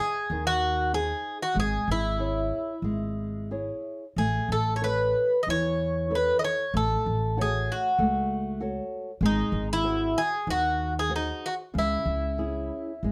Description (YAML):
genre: fado-style ballad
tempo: 94 BPM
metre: 4/4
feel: uneven beats, rubato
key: C# minor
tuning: A4 = 440 Hz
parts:
  - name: Greek bouzouki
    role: melody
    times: 0.0-13.1 s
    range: D#4 to D#5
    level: -29 LUFS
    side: equal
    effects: none
  - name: flamenco guitar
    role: accompaniment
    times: 0.0-13.1 s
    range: C#3 to D#5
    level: -34 LUFS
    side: equal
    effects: none
  - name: upright bass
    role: bass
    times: 0.3-13.1 s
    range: G#1 to E2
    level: -33 LUFS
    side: equal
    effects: none
room: moderate studio reverb, RT60 0.6 s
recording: none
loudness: -27 LUFS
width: mono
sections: 0.0-13.1 A section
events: none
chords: 0.0 G#; 1.6 C#m/G#; 4.2 Aadd9; 6.7 F#m/A; 9.2 G#7; 11.7 C#m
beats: 0.31 0.93 | 1.56 2.19 2.83 3.50 | 4.16 4.81 5.47 6.11 | 6.75 7.38 8.00 8.62 | 9.23 9.84 10.47 11.10 | 11.74 12.38 13.04